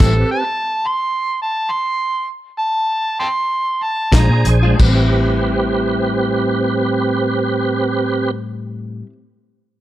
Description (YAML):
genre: straight-eighth soul blues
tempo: 87-109 BPM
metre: 4/4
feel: straight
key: A minor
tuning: A4 = 441 Hz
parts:
  - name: overdriven harmonica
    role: melody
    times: 0.0-4.5 s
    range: A4 to C6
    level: -18 LUFS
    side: right 1 dB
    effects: none
  - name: tonewheel organ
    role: accompaniment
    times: 0.0-0.5, 4.1-8.3 s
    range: C4 to Ab5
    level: -18 LUFS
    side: right 3 dB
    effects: slow rotary speaker, overdrive, chorus vibrato
  - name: direct-recorded clean electric guitar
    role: stabs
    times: 0.0-0.2, 4.1-9.1 s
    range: A2 to F4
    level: -22 LUFS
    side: left 4 dB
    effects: spring reverb
  - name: vintage muted picked electric bass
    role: bass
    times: 0.0-0.2, 4.1-9.0 s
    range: A1 to Bb2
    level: -16 LUFS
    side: equal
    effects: none
  - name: warm soul drum kit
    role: drums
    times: 0.0-0.1, 4.1-5.0 s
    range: crash cymbal, hi-hat, kick drum, snare drum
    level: -16 LUFS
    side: equal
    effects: none
room: light reverb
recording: none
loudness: -15 LUFS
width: side -14 dB against mid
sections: 0.0-4.8 A section; 4.8-7.5 B section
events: slowing down 0.0-4.8; stop 0.0-4.1; tonewheel organ fill 3.8-4.8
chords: 0.0 Am7; 4.1 Bb7; 4.8 Am7